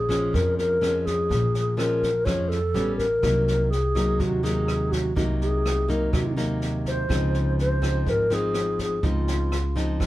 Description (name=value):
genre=bossa nova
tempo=124 BPM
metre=4/4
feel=straight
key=unclear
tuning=A4 = 439 Hz
part: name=mellow hollow wooden-headed alto flute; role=melody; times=0.0-10.0 s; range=F4 to Db5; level=-25 LUFS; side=left 1 dB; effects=none
part: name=nylon-string guitar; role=accompaniment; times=0.0-10.1 s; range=F2 to Eb4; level=-27 LUFS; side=equal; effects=none
part: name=upright bass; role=bass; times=0.0-10.1 s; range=Ab1 to F2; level=-27 LUFS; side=right 1 dB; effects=none
part: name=jazz brush drum kit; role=drums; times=0.1-10.1 s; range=kick drum, rim click, snare drum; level=-31 LUFS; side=equal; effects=none
room=moderate large studio reverb, RT60 0.9 s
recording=band playing live in one room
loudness=-21 LUFS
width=side -15 dB against mid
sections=0.0-10.1 A section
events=none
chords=0.0 Bbm7; 2.8 A9; 3.2 Ab9/C; 7.1 Dbmaj9